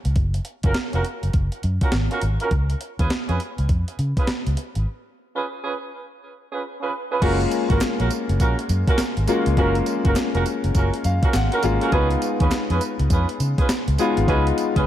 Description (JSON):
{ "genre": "R&B, new jack swing", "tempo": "102 BPM", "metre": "4/4", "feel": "swing 62% on 16ths", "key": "unclear", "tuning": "A4 = 442 Hz", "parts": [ { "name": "crisp 8-bit digital drum machine", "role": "drums", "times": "0.0-14.9 s", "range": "crash cymbal, hi-hat, kick drum, snare drum, tambourine", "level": "-23 LUFS", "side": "equal", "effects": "none" }, { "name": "vintage muted fingered electric bass", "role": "bass", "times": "0.1-14.8 s", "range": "E#1 to C#3", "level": "-22 LUFS", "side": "equal", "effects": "none" }, { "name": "mellow horn section", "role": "stabs", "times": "0.6-14.9 s", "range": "C#4 to B4", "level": "-26 LUFS", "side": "right 3 dB", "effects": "digital delay" }, { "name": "warm concert grand piano", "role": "accompaniment", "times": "7.2-14.9 s", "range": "G#3 to A#5", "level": "-23 LUFS", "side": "left 4 dB", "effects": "none" }, { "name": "group handclap", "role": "percussion", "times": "7.8-13.9 s", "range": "none", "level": "-40 LUFS", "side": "left 5 dB", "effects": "none" } ], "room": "light reverb", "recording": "dark, warm production", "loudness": "-19 LUFS", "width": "side -12 dB against mid", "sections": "0.0-7.2 A section; 7.2-14.9 B section", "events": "break 4.9-7.2; grand piano fill 10.8-11.9", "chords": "0.0 F#maj7; 2.5 C#7; 7.2 F#maj7; 11.9 C#7" }